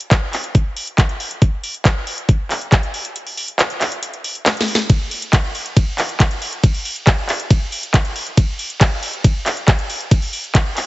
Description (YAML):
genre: trance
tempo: 138 BPM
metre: 4/4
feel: straight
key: none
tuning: none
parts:
  - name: drum and bass drum kit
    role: drums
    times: 0.0-10.9 s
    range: handclaps, hi-hat, ride cymbal, snare drum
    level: -20 LUFS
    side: equal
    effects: none
  - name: electronic kick drum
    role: drums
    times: 0.1-10.6 s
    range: none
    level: -14 LUFS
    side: equal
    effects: overdrive
room: light reverb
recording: heavily compressed radio sound, multiband compression, nothing above 7.9 kHz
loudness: -15 LUFS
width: side -19 dB against mid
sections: 0.0-10.9 A section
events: kick drops out 3.2-4.9; drum fill 4.5-4.9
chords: none